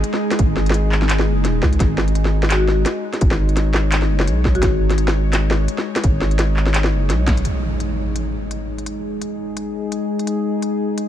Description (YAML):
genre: half-time drum and bass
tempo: 170 BPM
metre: 4/4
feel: swing 56% on 16ths, half-time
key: unclear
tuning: A4 = 440 Hz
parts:
  - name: bowed-like drone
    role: sustained chords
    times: 0.0-11.1 s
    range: G#3 to C#5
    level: -24 LUFS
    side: left 1 dB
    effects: built-in reverb, sidechain pumping
  - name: saturated sub bass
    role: bass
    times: 0.0-7.4 s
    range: D#1 to C#2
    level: -18 LUFS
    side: equal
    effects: none
  - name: industrial drum kit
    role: drums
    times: 0.0-11.1 s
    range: handclaps, hi-hat, snare drum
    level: -23 LUFS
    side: equal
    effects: none
  - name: electronic kick drum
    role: drums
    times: 0.4-7.4 s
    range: none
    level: -19 LUFS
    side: equal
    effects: none
  - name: marimba with medium hard mallets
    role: melody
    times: 2.5-4.8 s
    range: F#4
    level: -26 LUFS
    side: left 2 dB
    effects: vintage 12-bit sampler grit, ping-pong delay
  - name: impact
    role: sound effects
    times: 7.5-8.9 s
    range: none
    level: -26 LUFS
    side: equal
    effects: none
room: digital ambience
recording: none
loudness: -16 LUFS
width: side -11 dB against mid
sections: 0.0-7.5 A section; 7.5-11.1 B section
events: drop 0.0-7.5; band accent 7.3; impact 7.5-8.9; filter sweep on synth drone 7.5-11.1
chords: 0.0 G#5